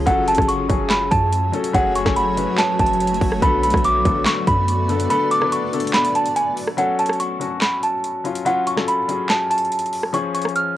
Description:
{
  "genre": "hip hop, trap",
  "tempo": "143 BPM",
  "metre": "4/4",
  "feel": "half-time",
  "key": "F# harmonic minor",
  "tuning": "A4 = 440 Hz",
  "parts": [
    { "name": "felt-muted upright piano", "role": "accompaniment", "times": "0.0-10.8 s", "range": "D3 to B4", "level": "-25 LUFS", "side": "left 6 dB", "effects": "cassette tape" },
    { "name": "granular cloud pad", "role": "sustained chords", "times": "0.0-6.7 s", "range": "F#3 to D5", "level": "-26 LUFS", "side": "equal", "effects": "built-in reverb, cassette tape" },
    { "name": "clean 808-style bass", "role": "bass", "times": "0.0-5.1 s", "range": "F#1 to F#2", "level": "-24 LUFS", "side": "equal", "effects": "none" },
    { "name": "celesta", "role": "melody", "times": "0.1-10.8 s", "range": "F#5 to E#6", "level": "-20 LUFS", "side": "right 1 dB", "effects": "cassette tape, tape echo" },
    { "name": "trap drum kit", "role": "drums", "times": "0.1-10.7 s", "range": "handclaps, hi-hat, kick drum, rim click, snare drum", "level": "-23 LUFS", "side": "right 1 dB", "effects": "overdrive, cassette tape" }
  ],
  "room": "light reverb",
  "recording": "home recording on cassette",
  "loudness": "-17 LUFS",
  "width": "side -13 dB against mid",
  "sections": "0.0-6.8 A section; 6.8-10.8 B section",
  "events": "kick muted 5.1-6.8; break 6.8-10.8",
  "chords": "0.1 F#m; 3.4 Bm7; 6.8 F#m; 10.1 C#"
}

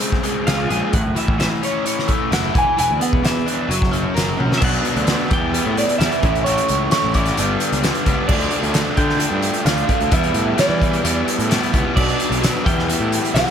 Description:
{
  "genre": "indie rock",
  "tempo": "131 BPM",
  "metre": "4/4",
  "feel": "straight",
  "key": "A major",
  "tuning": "A4 = 440 Hz",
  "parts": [
    { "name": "electric guitar through a small old amp", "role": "melody", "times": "0.0-13.5 s", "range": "B#4 to G#5", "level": "-23 LUFS", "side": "right 2 dB", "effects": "phaser, digital delay" },
    { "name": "overdriven electric guitar", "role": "riff", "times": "0.0-13.5 s", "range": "G2 to A#4", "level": "-20 LUFS", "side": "left 1 dB", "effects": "none" },
    { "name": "loose indie drum kit", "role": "drums", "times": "0.0-13.5 s", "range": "crash cymbal, hi-hat, kick drum, snare drum, toms", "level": "-21 LUFS", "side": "equal", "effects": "none" },
    { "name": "fuzz picked electric bass", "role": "bass", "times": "0.5-13.4 s", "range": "E1 to E3", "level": "-23 LUFS", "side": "equal", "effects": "overdrive" }
  ],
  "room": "light reverb, small room ambience",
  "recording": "none",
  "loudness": "-16 LUFS",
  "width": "side -8 dB against mid",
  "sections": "0.0-4.6 A section; 4.6-13.5 B section",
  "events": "drum fill 4.4",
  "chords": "0.0 C#maj7; 0.9 A; 2.5 E5; 3.7 F#7; 4.6 Bm; 5.3 Em; 6.2 A; 7.4 G; 8.3 Dm; 10.1 Em7; 12.0 Bm; 12.7 Em"
}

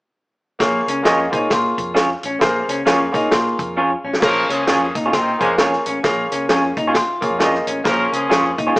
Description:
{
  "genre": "uptempo 1960s-style soul",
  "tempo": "132 BPM",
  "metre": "4/4",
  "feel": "swing 61% on 8ths",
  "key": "Bb minor",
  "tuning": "A4 = 440 Hz",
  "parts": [
    { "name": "bright grand piano", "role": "accompaniment", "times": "0.6-8.6 s", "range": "Bb3 to Eb5", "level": "-21 LUFS", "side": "equal", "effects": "none" },
    { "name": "clean electric guitar", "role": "riff", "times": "0.6-8.8 s", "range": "Bb3 to F4", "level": "-22 LUFS", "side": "left 1 dB", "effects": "none" },
    { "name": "vintage muted fingered electric bass", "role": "bass", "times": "0.6-8.8 s", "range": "A1 to Bb2", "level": "-31 LUFS", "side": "equal", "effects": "none" },
    { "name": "warm soul drum kit", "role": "drums", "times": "0.6-8.8 s", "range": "crash cymbal, hi-hat, kick drum, snare drum", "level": "-20 LUFS", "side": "equal", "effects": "none" },
    { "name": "electric guitar through a small old amp", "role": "stabs", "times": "1.1-8.7 s", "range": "Db4 to Db5", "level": "-19 LUFS", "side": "right 1 dB", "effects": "none" },
    { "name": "warm horn section", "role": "second line", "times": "4.2-8.8 s", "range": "Bb2 to Bb4", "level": "-21 LUFS", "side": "equal", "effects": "none" }
  ],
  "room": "moderate stone room reverb, RT60 1.2 s",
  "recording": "band playing live in one room, small speaker sound",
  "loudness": "-15 LUFS",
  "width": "side -22 dB against mid",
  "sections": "0.6-4.2 A section; 4.2-8.8 B section",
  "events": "drum fill 3.8-4.2",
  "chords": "0.6 Bbm7"
}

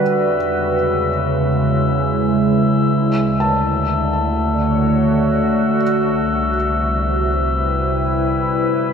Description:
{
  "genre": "ambient",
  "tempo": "free time",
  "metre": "none",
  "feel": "none",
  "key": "unclear",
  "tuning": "A4 = 443 Hz",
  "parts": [
    { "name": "evolving wavetable pad", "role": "sustained chords", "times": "0.0-8.9 s", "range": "C3 to C#5", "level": "-16 LUFS", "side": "right 1 dB", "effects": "chorus, built-in reverb" },
    { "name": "felt-muted upright piano", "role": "arpeggios", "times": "0.0-5.8 s", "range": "D5 to A5", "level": "-27 LUFS", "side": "equal", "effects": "ping-pong delay" },
    { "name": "round analog bass", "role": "bass", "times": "0.0-8.9 s", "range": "C2 to G2", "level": "-25 LUFS", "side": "equal", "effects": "tube saturation" },
    { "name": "glass harmonica", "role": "texture", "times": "0.0-8.9 s", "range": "E5 to E6", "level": "-23 LUFS", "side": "left 4 dB", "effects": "stereo widening" }
  ],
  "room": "wet cathedral reverb, RT60 6.2 s",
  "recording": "in a vast, echoing space",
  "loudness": "-15 LUFS",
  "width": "side -6 dB against mid",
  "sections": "0.0-8.9 A section",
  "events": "fade-in on analog synth bass 0.0-8.9",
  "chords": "0.0 E6; 2.9 Dmaj7; 5.8 Cmaj7"
}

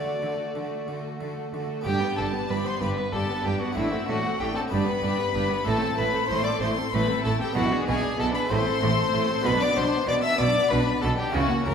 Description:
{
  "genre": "classical, baroque-style concerto movement with solo episodes",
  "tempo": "63 BPM (dotted quarters)",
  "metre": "6/8",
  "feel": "straight",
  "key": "G major",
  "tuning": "A4 = 440 Hz",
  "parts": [
    { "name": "rich chamber violin section", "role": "melody", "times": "0.0-11.7 s", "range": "A4 to E6", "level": "-32 LUFS", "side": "left 6 dB", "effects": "none" },
    { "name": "warm violin", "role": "melody", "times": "0.0-11.7 s", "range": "E4 to E5", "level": "-27 LUFS", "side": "left 2 dB", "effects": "none" },
    { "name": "rich chamber violin section", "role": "second line", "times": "0.0-11.7 s", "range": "B3 to B4", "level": "-33 LUFS", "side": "left 2 dB", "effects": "none" },
    { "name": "harpsichord", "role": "accompaniment", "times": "0.0-11.7 s", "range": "G2 to A4", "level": "-34 LUFS", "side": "right 2 dB", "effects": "none" },
    { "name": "rich chamber viola section", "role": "accompaniment", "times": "0.0-11.7 s", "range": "A3 to D4", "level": "-31 LUFS", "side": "right 2 dB", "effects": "none" },
    { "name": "clear studio cello section", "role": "bass", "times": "0.2-11.7 s", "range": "G2 to D3", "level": "-31 LUFS", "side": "right 2 dB", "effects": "none" },
    { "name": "dark chamber double bass section", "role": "bass", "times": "1.9-11.7 s", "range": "G1 to C#2", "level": "-30 LUFS", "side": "right 2 dB", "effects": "none" }
  ],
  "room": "wet recital hall reverb, RT60 1.3 s",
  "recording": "heard from further back in the room",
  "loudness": "-22 LUFS",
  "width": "side -7 dB against mid",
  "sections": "0.0-1.9 A section; 1.9-11.7 B section",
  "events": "none",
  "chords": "0.0 D; 1.9 G; 3.8 D7/A; 4.7 G; 5.7 Am; 7.6 E7/B; 8.5 Am; 9.4 Bm"
}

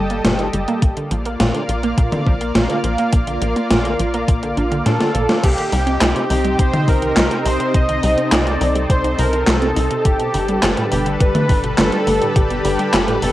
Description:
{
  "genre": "synthwave",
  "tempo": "104 BPM",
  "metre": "4/4",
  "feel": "straight",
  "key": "C dorian",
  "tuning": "A4 = 439 Hz",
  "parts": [
    { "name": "analog string pad", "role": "sustained chords", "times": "0.0-13.3 s", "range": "C3 to F5", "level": "-22 LUFS", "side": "equal", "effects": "ensemble chorus, sidechain pumping, cassette tape" },
    { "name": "analog pluck", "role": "arpeggios", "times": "0.0-13.3 s", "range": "A2 to Eb4", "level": "-24 LUFS", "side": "right 1 dB", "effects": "chorus, cassette tape, analog delay" },
    { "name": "tight sequencer bass", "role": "bass", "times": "0.0-13.3 s", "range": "G1 to Bb2", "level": "-22 LUFS", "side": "equal", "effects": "sidechain pumping" },
    { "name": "gated 80s digital drum machine", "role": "drums", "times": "0.1-13.3 s", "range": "crash cymbal, handclaps, hi-hat, snare drum, toms", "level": "-19 LUFS", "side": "equal", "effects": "gated reverb, gated reverb snare, overdrive, cassette tape" },
    { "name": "electronic kick drum", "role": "drums", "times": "0.8-12.5 s", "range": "none", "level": "-16 LUFS", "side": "equal", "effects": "overdrive, cassette tape" },
    { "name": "soft supersaw", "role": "melody", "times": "4.9-13.3 s", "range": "G4 to Eb5", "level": "-20 LUFS", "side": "equal", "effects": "cassette tape, analog delay" }
  ],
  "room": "moderate small room reverb, RT60 0.5 s",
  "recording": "home recording on cassette",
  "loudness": "-15 LUFS",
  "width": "side -15 dB against mid",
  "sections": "0.0-5.4 A section; 5.4-13.3 B section",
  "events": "drum fill 4.9-5.4",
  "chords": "0.0 Eb/G; 0.8 Bb; 5.4 Cm; 10.1 Gadd9"
}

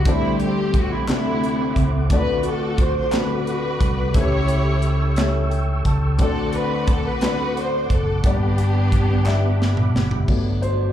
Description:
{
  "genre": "slow gospel",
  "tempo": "59 BPM (dotted quarters)",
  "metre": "6/8",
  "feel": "straight",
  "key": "unclear",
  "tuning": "A4 = 441 Hz",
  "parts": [
    { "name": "rich symphonic string section", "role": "melody", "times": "0.0-10.0 s", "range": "G3 to C#5", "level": "-24 LUFS", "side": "equal", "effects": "slapback echo" },
    { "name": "warm baby grand piano", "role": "accompaniment", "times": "0.0-10.9 s", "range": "G2 to A5", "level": "-26 LUFS", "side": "left 3 dB", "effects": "slapback echo" },
    { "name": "mellow tonewheel organ", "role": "sustained chords", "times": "0.0-10.9 s", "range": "F#4 to E6", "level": "-32 LUFS", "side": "equal", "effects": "slow rotary speaker, chorus vibrato" },
    { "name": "fingered electric bass", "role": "bass", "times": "0.0-10.9 s", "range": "F#1 to D2", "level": "-22 LUFS", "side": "equal", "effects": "none" },
    { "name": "crisp fusion drum kit", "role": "drums", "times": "0.1-10.8 s", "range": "crash cymbal, hi-hat, kick drum, snare drum, toms", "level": "-22 LUFS", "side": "equal", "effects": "none" },
    { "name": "group handclap", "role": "percussion", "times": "1.1-9.6 s", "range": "none", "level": "-35 LUFS", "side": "left 2 dB", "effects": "slapback echo" },
    { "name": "mellow French horn section", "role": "sustained chords", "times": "10.3-10.9 s", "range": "B2 to F#4", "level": "-31 LUFS", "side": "equal", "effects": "none" }
  ],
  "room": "studio reverb",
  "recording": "live gig heard through the venue's PA, club reverb",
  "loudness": "-18 LUFS",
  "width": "side -11 dB against mid",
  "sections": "0.0-10.3 A section",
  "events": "grand piano fill 5.2-6.2; drum fill 9.3-10.3",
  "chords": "0.1 D7sus4; 1.1 D7; 4.1 A7/C#; 6.2 D7; 8.2 Gmaj7"
}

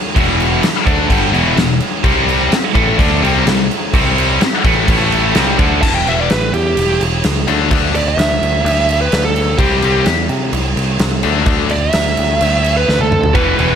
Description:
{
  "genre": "hard rock",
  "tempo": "127 BPM",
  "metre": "4/4",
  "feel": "straight",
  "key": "unclear",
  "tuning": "A4 = 441 Hz",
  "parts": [
    { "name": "high-gain distorted guitar", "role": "riff", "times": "0.1-5.8, 13.3-13.8 s", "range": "E2 to D4", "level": "-18 LUFS", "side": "right 13 dB", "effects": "distortion" },
    { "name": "heavy high-gain guitar", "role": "riff", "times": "0.2-13.8 s", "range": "E2 to D4", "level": "-17 LUFS", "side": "left 13 dB", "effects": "distortion" },
    { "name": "picked electric bass", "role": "bass", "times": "0.2-13.8 s", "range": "E1 to C3", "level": "-18 LUFS", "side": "equal", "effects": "none" },
    { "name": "huge arena drum kit", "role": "drums", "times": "0.2-13.7 s", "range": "crash cymbal, kick drum, snare drum, toms", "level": "-16 LUFS", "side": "equal", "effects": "none" },
    { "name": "high-gain lead guitar", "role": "melody", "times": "5.8-13.8 s", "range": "G4 to A5", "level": "-16 LUFS", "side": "right 2 dB", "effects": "distortion, slapback echo" }
  ],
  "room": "light reverb, small room ambience",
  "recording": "none",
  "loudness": "-11 LUFS",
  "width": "side -8 dB against mid",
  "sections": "0.0-5.8 A section; 5.8-13.8 B section",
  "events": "lead electric guitar solo 5.8-13.8; drum fill 12.9-13.4",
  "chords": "0.0 Em; 2.1 C5; 4.9 A5; 5.3 C5; 5.8 Em; 7.5 D5; 9.6 C; 11.2 D5"
}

